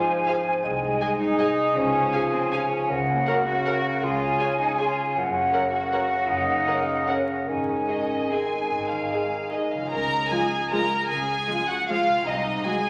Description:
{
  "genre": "classical, orchestral ballroom waltz",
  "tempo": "140-172 BPM",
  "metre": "3/4",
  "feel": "rubato",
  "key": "Db major",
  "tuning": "A4 = 437 Hz",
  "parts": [
    { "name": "large flute ensemble", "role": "second line", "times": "0.0-9.7 s", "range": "Gb5 to Ab5", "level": "-29 LUFS", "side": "equal", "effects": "none" },
    { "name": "mellow clarinet", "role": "second line", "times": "0.0-9.7 s", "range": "Ab4 to C5", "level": "-34 LUFS", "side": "equal", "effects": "none" },
    { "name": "dark bassoon", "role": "accompaniment", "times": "0.0-9.7 s", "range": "Db3 to Ab3", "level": "-33 LUFS", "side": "equal", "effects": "none" },
    { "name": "mellow French horn section", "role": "sustained chords", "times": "0.0-12.8 s", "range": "Ab3 to Eb5", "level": "-35 LUFS", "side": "equal", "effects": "none" },
    { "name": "concert harp", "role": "arpeggios", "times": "0.0-12.9 s", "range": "Gb2 to Db5", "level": "-35 LUFS", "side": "equal", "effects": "none" },
    { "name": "warm symphonic cello section", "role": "bass", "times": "0.0-12.6 s", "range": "C3 to Gb4", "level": "-33 LUFS", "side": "equal", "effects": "none" },
    { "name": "warm studio violin section", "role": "melody", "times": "0.3-12.9 s", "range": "Eb5 to Bb5", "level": "-30 LUFS", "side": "equal", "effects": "none" },
    { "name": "dark chamber violin section", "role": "second line", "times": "0.3-12.9 s", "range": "Eb4 to F5", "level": "-37 LUFS", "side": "equal", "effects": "none" },
    { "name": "dark symphonic viola section", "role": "accompaniment", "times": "0.3-12.7 s", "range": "F3 to Bb4", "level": "-37 LUFS", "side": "equal", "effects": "none" },
    { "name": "dark symphonic double bass section", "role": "bass", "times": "0.6-12.6 s", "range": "Gb1 to Db2", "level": "-41 LUFS", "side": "equal", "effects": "none" }
  ],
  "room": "wet scoring stage reverb, RT60 1.6 s",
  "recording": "vinyl crackle",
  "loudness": "-24 LUFS",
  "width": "mono",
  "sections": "0.0-9.9 A section; 9.9-12.9 B section",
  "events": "none",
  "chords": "0.0 Fm/Ab; 0.6 Ab/C; 1.8 Db; 2.9 Gb/Db; 4.0 Db; 5.2 Gb; 7.5 Ab; 9.9 Db; 12.3 Ab7/C"
}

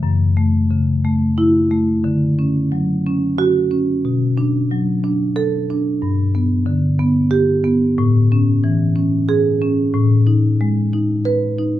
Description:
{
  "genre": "classical, contemporary piece for solo marimba",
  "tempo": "91 BPM",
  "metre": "3/4",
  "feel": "straight",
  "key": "F# minor",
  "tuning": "A4 = 440 Hz",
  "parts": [
    { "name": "marimba with medium mallets", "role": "solo", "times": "0.0-11.8 s", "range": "F#2 to B4", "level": "-14 LUFS", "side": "equal", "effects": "none" }
  ],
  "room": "light reverb",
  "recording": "lossy compression artefacts",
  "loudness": "-14 LUFS",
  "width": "side -13 dB against mid",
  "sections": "0.0-11.8 A section",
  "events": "none",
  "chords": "0.0 F#m7; 2.1 Dmaj7; 4.0 Bm7; 6.0 G; 8.0 Amaj7; 9.9 B6/A"
}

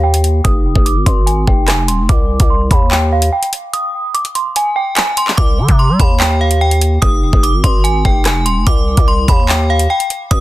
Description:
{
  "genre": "hip hop, drill",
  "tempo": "146 BPM",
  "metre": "4/4",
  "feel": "half-time",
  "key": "C harmonic minor",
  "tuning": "A4 = 440 Hz",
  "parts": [
    { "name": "metallic FM bell", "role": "melody", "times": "0.0-10.4 s", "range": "F5 to Eb6", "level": "-17 LUFS", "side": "right 1 dB", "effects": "chorus, low-pass filter, ping-pong delay" },
    { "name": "growling 808-style bass", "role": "bass", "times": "0.0-10.4 s", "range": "Eb1 to G3", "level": "-14 LUFS", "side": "equal", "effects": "none" },
    { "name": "drill drum kit", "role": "drums", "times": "0.1-10.4 s", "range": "handclaps, hi-hat, kick drum, rim click", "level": "-13 LUFS", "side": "equal", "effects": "none" }
  ],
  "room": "little or no reverb",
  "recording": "dense, heavily limited modern master",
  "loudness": "-11 LUFS",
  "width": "side -16 dB against mid",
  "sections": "0.0-10.4 A section",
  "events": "filter sweep on synth bell 0.0-5.4; break 3.7-5.4",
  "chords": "0.4 Fm7; 2.1 Cmadd9; 3.7 N.C.; 5.4 Cmadd9; 7.0 Fm7; 8.7 Cmadd9"
}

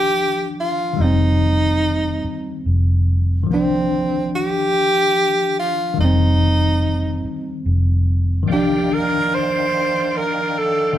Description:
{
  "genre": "slow six-eight R&B",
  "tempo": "48 BPM (dotted quarters)",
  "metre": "6/8",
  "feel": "straight",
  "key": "C minor",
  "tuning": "A4 = 440 Hz",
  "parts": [
    { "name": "breathy tenor saxophone", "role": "melody", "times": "0.0-11.0 s", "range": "C4 to C5", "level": "-19 LUFS", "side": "right 1 dB", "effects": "none" },
    { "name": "tine electric piano", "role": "accompaniment", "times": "0.0-11.0 s", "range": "Eb3 to D4", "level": "-22 LUFS", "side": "left 2 dB", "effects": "medium stereo tremolo" },
    { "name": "vintage muted fingered electric bass", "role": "bass", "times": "0.0-10.9 s", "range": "F1 to C2", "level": "-18 LUFS", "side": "equal", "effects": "none" },
    { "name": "bright tonewheel organ", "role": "sustained chords", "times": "8.5-11.0 s", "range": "Eb3 to G5", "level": "-26 LUFS", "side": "right 1 dB", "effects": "chorus vibrato, fast rotary speaker" }
  ],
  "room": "moderate stone room reverb, RT60 1.1 s",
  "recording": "band playing live in one room",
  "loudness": "-16 LUFS",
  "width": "side -12 dB against mid",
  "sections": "0.0-11.0 A section",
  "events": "none",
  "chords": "0.0 Cm11; 1.0 F7sus4; 3.5 Cm11; 6.0 F7sus4; 8.5 Cm11"
}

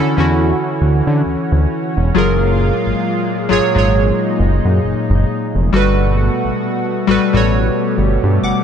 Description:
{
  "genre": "R&B",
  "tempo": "67 BPM",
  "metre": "4/4",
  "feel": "swing 58% on 16ths",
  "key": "unclear",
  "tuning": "A4 = 439 Hz",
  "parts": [
    { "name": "warm analog keys", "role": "accompaniment", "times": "0.0-8.6 s", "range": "D3 to D6", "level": "-16 LUFS", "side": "left 1 dB", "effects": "chorus" },
    { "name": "lush unison pad", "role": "sustained chords", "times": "0.0-8.6 s", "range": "A#2 to F#4", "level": "-20 LUFS", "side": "right 1 dB", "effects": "chorus" },
    { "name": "fat analog bass", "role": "bass", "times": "0.0-8.5 s", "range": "E1 to D3", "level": "-15 LUFS", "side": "equal", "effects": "none" }
  ],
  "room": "light reverb",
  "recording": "dark, warm production, nothing above 10.8 kHz",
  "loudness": "-13 LUFS",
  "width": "side -8 dB against mid",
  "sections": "0.0-8.6 A section",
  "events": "none",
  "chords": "0.0 Dmaj9; 2.2 F#maj9; 5.7 Gmaj9"
}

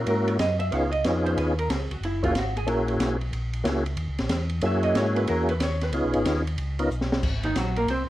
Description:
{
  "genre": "soul jazz organ trio",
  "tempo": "184 BPM",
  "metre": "4/4",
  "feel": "swing 64% on 8ths",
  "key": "unclear",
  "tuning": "A4 = 441 Hz",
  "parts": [
    { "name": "percussive tonewheel organ", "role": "melody", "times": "0.0-6.9 s", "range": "Bb3 to Bb4", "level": "-25 LUFS", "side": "equal", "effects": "slow rotary speaker, chorus vibrato" },
    { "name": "mellow tonewheel organ", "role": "bass", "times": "0.0-8.1 s", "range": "Gb1 to Ab2", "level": "-28 LUFS", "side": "equal", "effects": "slow rotary speaker" },
    { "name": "archtop guitar, miked and amplified", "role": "accompaniment", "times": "0.1-8.0 s", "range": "Eb3 to F5", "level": "-28 LUFS", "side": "right 2 dB", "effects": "none" },
    { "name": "open jazz drum kit", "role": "drums", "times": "0.1-8.0 s", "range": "crash cymbal, hi-hat, kick drum, ride cymbal, snare drum", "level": "-30 LUFS", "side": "equal", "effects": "none" }
  ],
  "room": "moderate studio reverb, RT60 0.7 s",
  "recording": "worn, warbling old tape, cassette tape, warbly pitch drift",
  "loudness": "-23 LUFS",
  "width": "side -15 dB against mid",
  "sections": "0.0-8.1 A section",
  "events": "hollow-body jazz guitar solo 0.0-8.1; drum fill 6.9-7.2",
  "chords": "0.0 Gb9; 0.7 Db9; 2.0 Gb9; 5.9 Db9; 7.2 Ab9"
}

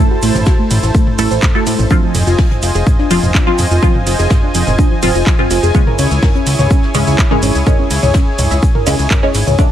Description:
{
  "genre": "melodic techno",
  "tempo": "125 BPM",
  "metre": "4/4",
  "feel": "straight",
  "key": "unclear",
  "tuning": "A4 = 441 Hz",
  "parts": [
    { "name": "warm analog pad", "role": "sustained chords", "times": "0.0-9.7 s", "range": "E4 to A5", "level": "-21 LUFS", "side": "equal", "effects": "chorus, sidechain pumping" },
    { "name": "filtered dub chord stab", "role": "stabs", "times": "0.0-9.7 s", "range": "C#3 to A4", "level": "-19 LUFS", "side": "right 1 dB", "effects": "phaser, ensemble chorus, sidechain pumping, ping-pong delay" },
    { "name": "soft round pluck", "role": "arpeggios", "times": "0.1-9.6 s", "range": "F3 to E5", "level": "-20 LUFS", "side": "left 1 dB", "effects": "wide subtle chorus, sidechain pumping, ping-pong delay" },
    { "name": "fat analog bass", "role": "bass", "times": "0.2-9.6 s", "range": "F1 to A2", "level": "-15 LUFS", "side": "equal", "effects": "sidechain pumping" },
    { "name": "house drum kit", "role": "drums", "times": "0.2-9.7 s", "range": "handclaps, hi-hat, ride cymbal, shaker, toms", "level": "-19 LUFS", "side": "right 1 dB", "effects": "none" },
    { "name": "soft brush drum kit", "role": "drums", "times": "0.2-9.7 s", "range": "hi-hat, shaker, snare drum", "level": "-31 LUFS", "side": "left 1 dB", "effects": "none" },
    { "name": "electronic kick drum", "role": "drums", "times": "0.5-9.7 s", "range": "none", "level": "-12 LUFS", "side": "equal", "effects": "none" }
  ],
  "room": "little or no reverb",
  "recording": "none",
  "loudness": "-10 LUFS",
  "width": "side -11 dB against mid",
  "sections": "0.0-9.7 A section",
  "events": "none",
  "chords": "0.0 Am; 1.9 Fm7; 5.7 C#m"
}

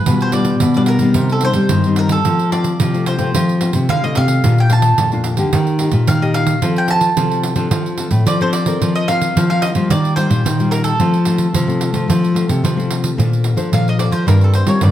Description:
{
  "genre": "samba and choro",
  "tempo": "110 BPM",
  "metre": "4/4",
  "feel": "straight",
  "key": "Bb major",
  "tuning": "A4 = 440 Hz",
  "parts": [
    { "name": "mandolin", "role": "melody", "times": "0.0-14.9 s", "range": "A4 to A5", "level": "-20 LUFS", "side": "right 1 dB", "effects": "plate reverb, tape echo" },
    { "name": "nylon-string guitar", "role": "accompaniment", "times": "0.0-14.9 s", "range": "F2 to C5", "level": "-19 LUFS", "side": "left 3 dB", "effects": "none" },
    { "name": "nylon-string guitar", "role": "bass", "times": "0.1-14.9 s", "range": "G2 to B3", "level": "-16 LUFS", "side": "equal", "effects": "none" },
    { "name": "pandeiro", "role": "percussion", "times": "0.1-14.9 s", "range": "none", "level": "-21 LUFS", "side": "right 5 dB", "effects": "none" }
  ],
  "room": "light reverb",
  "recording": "none",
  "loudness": "-13 LUFS",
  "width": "side -11 dB against mid",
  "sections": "0.0-13.2 A section; 13.2-14.9 B section",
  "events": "mandolin solo 13.2-14.9",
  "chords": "0.1 G7/B; 1.2 Cm; 2.3 F; 4.4 Bb; 5.5 Eb; 6.6 F; 7.7 Dm7; 8.8 Bbsus2/F; 9.9 Ebadd9; 11.0 F; 13.2 Bbmaj9; 14.3 Gm7"
}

